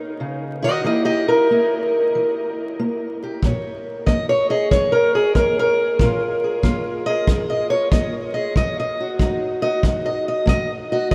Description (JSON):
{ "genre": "acoustic country blues, solo or duo", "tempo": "94 BPM", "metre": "4/4", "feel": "swing 68% on 8ths", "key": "Bb minor", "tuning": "A4 = 441 Hz", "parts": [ { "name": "fingerpicked steel-string acoustic guitar", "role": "melody", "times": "0.0-11.1 s", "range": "F2 to Eb5", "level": "-21 LUFS", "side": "equal", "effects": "none" }, { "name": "kick drum", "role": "drums", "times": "3.4-11.1 s", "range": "none", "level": "-23 LUFS", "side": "equal", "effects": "none" } ], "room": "wet huge ambient reverb, RT60 8.7 s", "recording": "in a vast, echoing space, vinyl crackle", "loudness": "-20 LUFS", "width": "mono", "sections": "0.0-11.1 A section", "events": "steel-string acoustic guitar solo 0.0-11.1", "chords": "0.0 Ebm7; 0.9 Edim; 3.4 Bbm7; 8.6 F7b9" }